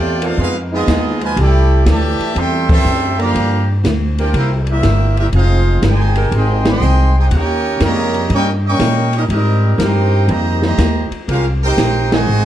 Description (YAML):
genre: jazz, big band swing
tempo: 121 BPM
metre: 4/4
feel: swing 68% on 8ths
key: Ab major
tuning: A4 = 444 Hz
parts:
  - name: bright trumpet section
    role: melody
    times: 0.0-12.4 s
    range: Cb4 to Db6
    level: -20 LUFS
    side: right 1 dB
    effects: none
  - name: clear trombone section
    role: second line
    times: 0.0-12.4 s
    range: A2 to G4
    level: -20 LUFS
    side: right 3 dB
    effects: none
  - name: upright bass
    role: bass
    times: 0.0-12.4 s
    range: F1 to Bb2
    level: -15 LUFS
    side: equal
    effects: none
  - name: warm saxophone section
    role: sustained chords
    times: 0.2-12.0 s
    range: E3 to Bb4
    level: -26 LUFS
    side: right 1 dB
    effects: none
  - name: open jazz drum kit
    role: drums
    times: 0.2-12.2 s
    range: crash cymbal, hi-hat, kick drum, ride cymbal, snare drum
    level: -20 LUFS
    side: equal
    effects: none
room: light reverb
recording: dark, warm production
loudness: -12 LUFS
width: side -12 dB against mid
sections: 0.0-12.4 A section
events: band accent 2.6, 6.6, 12.0; drum fill 12.3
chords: 0.4 Abm69; 1.4 C69; 3.4 Gm7; 4.3 C7; 5.3 Fm11; 7.3 Eb7; 9.3 Abmaj9